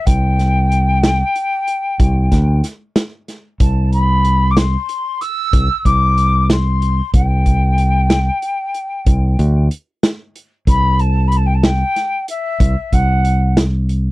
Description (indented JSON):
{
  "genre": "progressive instrumental, band music in an uneven meter",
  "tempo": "187 BPM (eighths)",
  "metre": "11/8",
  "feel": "straight",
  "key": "C lydian",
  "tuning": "A4 = 441 Hz",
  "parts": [
    { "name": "mellow concert flute", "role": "melody", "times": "0.0-13.6 s", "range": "E5 to E6", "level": "-19 LUFS", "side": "left 1 dB", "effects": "none" },
    { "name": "fingered electric bass", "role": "bass", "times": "0.1-14.1 s", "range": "C2 to D2", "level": "-14 LUFS", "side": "equal", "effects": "none" },
    { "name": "vintage drum kit", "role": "drums", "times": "0.1-14.0 s", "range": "hi-hat, kick drum, snare drum", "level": "-15 LUFS", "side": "equal", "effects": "none" }
  ],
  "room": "little or no reverb",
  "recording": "dry, close 1970s-style studio recording",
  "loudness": "-13 LUFS",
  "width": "side -19 dB against mid",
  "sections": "0.0-14.1 A section",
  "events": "none",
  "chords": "0.0 C5; 2.0 G5/C; 3.6 C5; 9.1 G5/C; 10.7 C5",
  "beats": "| 0.07 0.39 0.71 1.03 1.35 1.68 2.00 2.32 2.64 2.96 3.28 | 3.60 3.92 4.25 4.57 4.89 5.21 5.53 5.85 6.17 6.50 6.82 | 7.14 7.46 7.78 8.10 8.42 8.74 9.07 9.39 9.71 10.03 10.35 | 10.67 10.99 11.32 11.64 11.96 12.28 12.60 12.92 13.25 13.57 13.89"
}